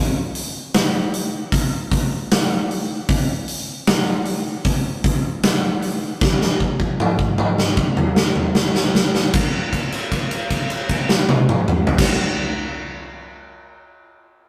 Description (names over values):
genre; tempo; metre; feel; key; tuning
rock; 77 BPM; 4/4; straight; none; none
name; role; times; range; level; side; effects
big rock drum kit; drums; 0.3-12.2 s; crash cymbal, hi-hat, kick drum, snare drum, toms; -20 LUFS; equal; none
room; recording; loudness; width
little or no reverb; rough rehearsal-room recording; -20 LUFS; mono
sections
0.0-9.3 A section; 9.3-12.4 B section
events
drum fill 6.2-9.3; held note 9.3-12.0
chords
none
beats
0.73 1.52 2.30 | 3.08 3.87 4.65 5.43 | 6.21 6.99 7.77 8.55 | 9.33 10.11 10.89 11.67